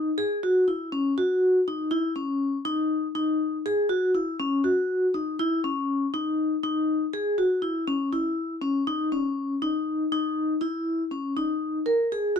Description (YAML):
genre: progressive instrumental, progressive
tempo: 241 BPM (eighths)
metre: 7/8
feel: straight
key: C# dorian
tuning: A4 = 439 Hz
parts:
  - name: vibraphone with medium mallets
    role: solo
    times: 0.0-12.4 s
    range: C#4 to A#4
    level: -23 LUFS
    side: left 1 dB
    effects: none
room: light reverb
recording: none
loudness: -23 LUFS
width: side -7 dB against mid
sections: 0.0-10.6 A section; 10.6-12.4 B section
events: none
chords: none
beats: | 0.17 0.42 0.67 0.92 1.17 1.42 1.66 | 1.91 2.16 2.41 2.66 2.91 3.16 3.40 | 3.65 3.90 4.15 4.40 4.65 4.90 5.15 | 5.39 5.64 5.89 6.14 6.39 6.64 6.89 | 7.14 7.38 7.63 7.88 8.13 8.38 8.63 | 8.88 9.13 9.38 9.62 9.87 10.12 10.37 | 10.62 10.87 11.12 11.37 11.61 11.86 12.11 | 12.36